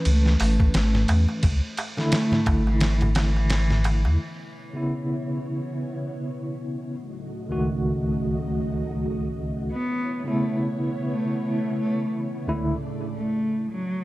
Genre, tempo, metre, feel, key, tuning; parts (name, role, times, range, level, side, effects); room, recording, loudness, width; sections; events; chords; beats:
trip hop; 87 BPM; 4/4; swing 58% on 16ths; C# minor; A4 = 440 Hz
tine electric piano; accompaniment; 0.0-12.8 s; C#2 to B4; -27 LUFS; equal; tremolo, vintage 12-bit sampler grit, tape echo
dark cello; melody; 0.1-4.1, 9.7-14.0 s; E3 to B3; -27 LUFS; equal; tape echo
soft dub sub bass; bass; 0.1-4.2 s; G#1 to E2; -21 LUFS; equal
trip hop sampler-style drum kit; drums; 0.1-4.0 s; hi-hat, kick drum, ride cymbal, snare drum; -26 LUFS; equal
darbuka; percussion; 0.1-4.2 s; -31 LUFS; right 1 dB
string machine, cellos; sustained chords; 4.2-13.8 s; C#3 to D#5; -32 LUFS; equal; phaser, ensemble chorus, vintage 12-bit sampler grit
light reverb, digital ambience; -22 LUFS; side -18 dB against mid
0.0-4.2 A section; 4.2-14.0 B section
0.0 C#m7; 1.4 Dsus2; 4.2 C#m7; 7.0 D#dim/C#; 9.7 C#m7; 12.5 Dsus2/C#
0.06 0.75 | 1.44 2.13 2.82 3.50 | 4.20 4.88 5.57 6.26 | 6.95 7.64 8.33 9.02 | 9.71 10.40 11.09 11.78 | 12.47 13.16 13.85